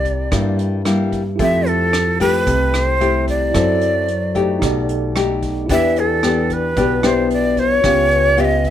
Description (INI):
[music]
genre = bossa nova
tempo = 112 BPM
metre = 4/4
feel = straight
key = unclear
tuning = A4 = 440 Hz
[part]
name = breathy bright shakuhachi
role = melody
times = 0.0-8.7 s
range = A4 to E5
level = -18 LUFS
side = equal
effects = none
[part]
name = nylon-string guitar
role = accompaniment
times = 0.0-8.7 s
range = G2 to A4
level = -19 LUFS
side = left 4 dB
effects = none
[part]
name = upright bass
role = bass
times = 0.0-8.7 s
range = B1 to G2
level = -22 LUFS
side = right 1 dB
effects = none
[part]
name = vintage brush drum kit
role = drums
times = 0.1-8.7 s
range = hi-hat, kick drum, rim click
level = -26 LUFS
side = right 1 dB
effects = none
[part]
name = tine electric piano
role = accompaniment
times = 1.4-8.7 s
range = C4 to E5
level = -25 LUFS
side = right 3 dB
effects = medium stereo tremolo
[sound]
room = light reverb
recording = none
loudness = -14 LUFS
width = side -10 dB against mid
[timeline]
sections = 0.0-8.7 A section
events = none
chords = 0.0 C7; 1.4 Fmaj9; 3.5 F#m7b5; 4.6 B7alt; 5.7 Em7; 7.8 Db7#11